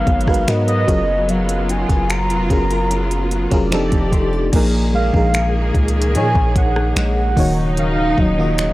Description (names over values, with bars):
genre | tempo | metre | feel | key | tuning
contemporary R&B | 74 BPM | 4/4 | straight | unclear | A4 = 437 Hz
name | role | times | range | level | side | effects
warm velvety synth lead | melody | 0.0-8.7 s | Eb5 to Bb5 | -22 LUFS | right 1 dB | chorus, analog delay
FM electric piano | accompaniment | 0.0-8.7 s | Bb2 to Eb5 | -22 LUFS | left 1 dB | chorus
clear studio string section | sustained chords | 0.0-8.7 s | Cb3 to D5 | -24 LUFS | equal | none
nylon-string guitar | arpeggios | 0.0-8.7 s | Bb2 to D5 | -25 LUFS | left 1 dB | none
long sustained 808-style bass | bass | 0.0-8.7 s | Eb1 to Bb2 | -20 LUFS | equal | none
smooth R&B drum kit | drums | 0.1-8.7 s | crash cymbal, finger snaps, hi-hat, kick drum, rim click | -19 LUFS | equal | none
room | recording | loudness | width
little or no reverb | dry, gritty hardware recording, transformer saturation | -14 LUFS | side -18 dB against mid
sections
0.0-4.5 A section; 4.5-8.7 B section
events
none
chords
0.0 Abm9; 0.9 Gbmaj7; 3.7 F13; 4.5 Bb7sus4; 7.4 Ebm9